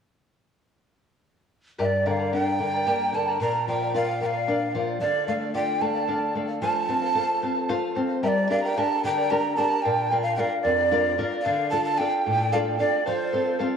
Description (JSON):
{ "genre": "andean folk", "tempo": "74 BPM (dotted quarters)", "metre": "6/8", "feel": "straight", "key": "unclear", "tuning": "A4 = 440 Hz", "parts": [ { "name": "breathy bright large quena", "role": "melody", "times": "1.8-13.6 s", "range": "C5 to Bb5", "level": "-24 LUFS", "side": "right 2 dB", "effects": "diffuse ambient delay" }, { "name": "charango", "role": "accompaniment", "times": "1.8-13.8 s", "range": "G4 to Bb5", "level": "-28 LUFS", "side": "left 1 dB", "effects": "none" }, { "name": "nylon-string guitar", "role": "accompaniment", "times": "1.8-13.8 s", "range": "F2 to Bb4", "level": "-28 LUFS", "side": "left 3 dB", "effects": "none" } ], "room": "wet plate reverb, RT60 2.6 s", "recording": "dreamy mix soaked in reverb, cassette tape", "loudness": "-22 LUFS", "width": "side -7 dB against mid", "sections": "1.8-8.2 A section; 8.2-13.8 B section", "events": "none", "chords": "1.8 Gm; 3.4 Bb; 5.0 Dm; 6.6 F; 8.2 Gm; 9.8 Bb; 11.5 Dm; 13.1 F", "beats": "| 1.79 2.59 | 3.40 4.21 | 5.01 5.82 | 6.63 7.43 | 8.24 9.04 | 9.85 10.65 | 11.45 12.26 | 13.06" }